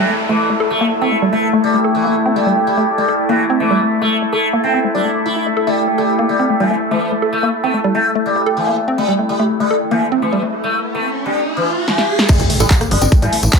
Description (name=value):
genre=psychedelic trance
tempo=145 BPM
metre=4/4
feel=straight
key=unclear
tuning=A4 = 440 Hz
part: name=sitar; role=melody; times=0.0-13.6 s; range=E3 to E4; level=-18 LUFS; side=equal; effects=phaser, sidechain pumping, tape echo
part: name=overtone-sweeping drone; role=sustained chords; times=0.0-13.6 s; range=A3 to E4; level=-20 LUFS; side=left 2 dB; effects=chorus, built-in reverb, sidechain pumping
part: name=woody wave-folded pluck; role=riff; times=0.0-13.6 s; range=G3 to A4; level=-19 LUFS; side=moving between left 6 dB and right 4 dB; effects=chorus, auto-pan, sidechain pumping, tape echo
part: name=downlifter, riser and impact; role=sound effects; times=0.0-2.4, 10.1-13.6 s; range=none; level=-23 LUFS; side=right 1 dB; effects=none
part: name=warbly tape-like pad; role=texture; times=0.0-13.6 s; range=A4 to A5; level=-27 LUFS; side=equal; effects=chorus, built-in reverb, sidechain pumping
part: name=techno drum kit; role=drums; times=11.9-13.6 s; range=crash cymbal, handclaps, hi-hat, rim click, snare drum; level=-18 LUFS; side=equal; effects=overdrive, low-pass filter on hats, low-pass filter on snare, low-pass filter on cymbals
part: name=electronic kick drum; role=drums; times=12.3-13.6 s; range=none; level=-11 LUFS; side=equal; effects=none
part: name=tambourine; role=percussion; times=12.3-13.6 s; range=none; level=-25 LUFS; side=left 4 dB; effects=none
part: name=tight sequencer bass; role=bass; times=12.4-13.5 s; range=G1 to A1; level=-15 LUFS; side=equal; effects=none
room=moderate digital room reverb, RT60 1.1 s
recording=none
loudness=-13 LUFS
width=side -4 dB against mid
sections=0.0-12.3 A section; 12.3-13.6 B section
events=riser 10.1-12.3; drum fill 11.9-12.3; drop 12.3-13.6; impact 12.3-13.6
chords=0.0 A5